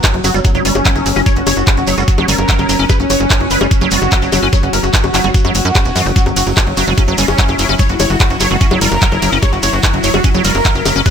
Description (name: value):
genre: psychedelic trance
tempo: 147 BPM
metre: 4/4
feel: straight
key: unclear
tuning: A4 = 440 Hz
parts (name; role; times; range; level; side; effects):
- wide unison lead; melody; 0.0-11.1 s; F#3 to C#5; -19 LUFS; equal; phaser, sidechain pumping, tape echo
- evolving wavetable pad; sustained chords; 0.0-11.1 s; F#3 to E4; -20 LUFS; left 2 dB; chorus, built-in reverb, sidechain pumping
- drum and bass drum kit; drums; 0.0-11.1 s; bongos, handclaps, hi-hat, ride cymbal; -18 LUFS; left 2 dB; none
- electronic kick drum; drums; 0.0-11.1 s; none; -13 LUFS; equal; none
- shekere; percussion; 0.0-11.1 s; none; -24 LUFS; right 6 dB; none
- tight sequencer bass; bass; 0.1-11.0 s; E1 to F#2; -17 LUFS; equal; none
- liquid acid bass; riff; 0.2-11.1 s; E3 to C#4; -19 LUFS; moving between left 7 dB and right 7 dB; chorus, auto-pan, sidechain pumping, digital delay
room: little or no reverb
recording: none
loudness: -10 LUFS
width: side -8 dB against mid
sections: 0.0-11.1 A section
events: none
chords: 0.0 F#5